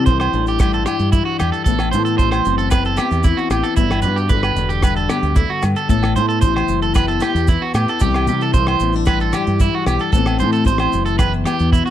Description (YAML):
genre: highlife guitar band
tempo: 113 BPM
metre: 4/4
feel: straight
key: unclear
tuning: A4 = 440 Hz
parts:
  - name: fingerpicked steel-string acoustic guitar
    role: accompaniment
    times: 0.0-11.9 s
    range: E2 to F#4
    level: -21 LUFS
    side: left 6 dB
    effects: none
  - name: electric guitar at the edge of break-up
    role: arpeggios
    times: 0.0-11.9 s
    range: E4 to C5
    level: -20 LUFS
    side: right 6 dB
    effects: tape echo
  - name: deep dub fingered electric bass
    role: bass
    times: 0.0-11.8 s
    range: E1 to C3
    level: -20 LUFS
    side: right 1 dB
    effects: none
  - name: damped 70s drum kit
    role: drums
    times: 0.1-11.9 s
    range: hi-hat, kick drum, rim click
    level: -17 LUFS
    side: equal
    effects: none
  - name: maracas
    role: percussion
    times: 0.1-11.9 s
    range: none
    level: -38 LUFS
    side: left 10 dB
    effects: none
  - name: agogo bells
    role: percussion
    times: 0.2-11.6 s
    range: none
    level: -28 LUFS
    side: left 4 dB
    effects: none
room: studio reverb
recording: dry, close 1970s-style studio recording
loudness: -14 LUFS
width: side -11 dB against mid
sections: 0.0-11.9 A section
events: none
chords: 0.0 Cadd9; 1.7 Amadd9; 3.8 G6; 5.9 Amadd9; 8.0 Cadd9; 10.1 Amadd9